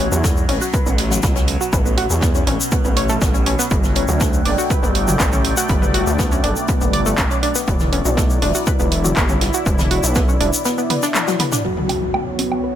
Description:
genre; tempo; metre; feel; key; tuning
melodic techno; 121 BPM; 4/4; straight; unclear; A4 = 440 Hz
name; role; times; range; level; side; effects
analog pluck; arpeggios; 0.0-12.7 s; F#3 to D5; -22 LUFS; equal; chorus, sidechain pumping, ping-pong delay
gritty driven synth bass; bass; 0.0-10.5 s; E1 to E2; -20 LUFS; equal; sidechain pumping
overtone-sweeping drone; drone; 0.0-11.7 s; B2 to F#3; -29 LUFS; equal; chorus, built-in reverb, sidechain pumping
tube shaker; percussion; 0.1-11.6 s; none; -25 LUFS; left 3 dB; none
electronic kick drum; drums; 0.2-10.3 s; none; -19 LUFS; equal; none
tight funk drum kit; drums; 0.2-11.6 s; hi-hat, snare drum; -31 LUFS; left 2 dB; high-pass filter on hats, high-pass filter on snare, high-pass filter on room
punchy analog drum machine; drums; 0.5-12.6 s; handclaps, hi-hat, toms, woodblock; -23 LUFS; right 1 dB; none
sweeping resonant pad; sustained chords; 3.7-12.8 s; A3 to G5; -25 LUFS; equal; chorus, sidechain pumping
wide unison lead; melody; 11.6-12.5 s; F#4; -24 LUFS; left 1 dB; sidechain pumping, ping-pong delay
impact; sound effects; 11.6-12.8 s; none; -26 LUFS; equal; none
room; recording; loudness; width
little or no reverb; none; -15 LUFS; side -11 dB against mid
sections
0.0-11.6 A section; 11.6-12.8 B section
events
drum fill 11.2-11.6; impact 11.6-12.8; filter sweep on synth pluck 11.6-12.8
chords
0.0 A; 3.7 Gsus2; 7.7 E7(no3); 11.6 Bsus2

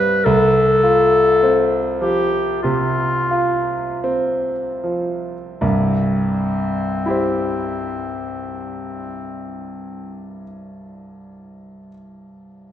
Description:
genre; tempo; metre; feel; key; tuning
classical, romantic duo for clarinet and grand piano; 36-53 BPM; 4/4; rubato; C major; A4 = 440 Hz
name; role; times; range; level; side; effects
warm clarinet; melody; 0.0-10.4 s; C4 to B4; -19 LUFS; left 2 dB; none
warm grand piano; accompaniment; 0.0-12.7 s; C2 to C5; -21 LUFS; right 1 dB; none
room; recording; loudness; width
wet recital hall reverb, RT60 1.5 s; none; -16 LUFS; side -10 dB against mid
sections
0.0-5.6 A section; 5.6-11.5 B section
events
slowing down 0.0-5.6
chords
0.3 F/C; 5.6 C

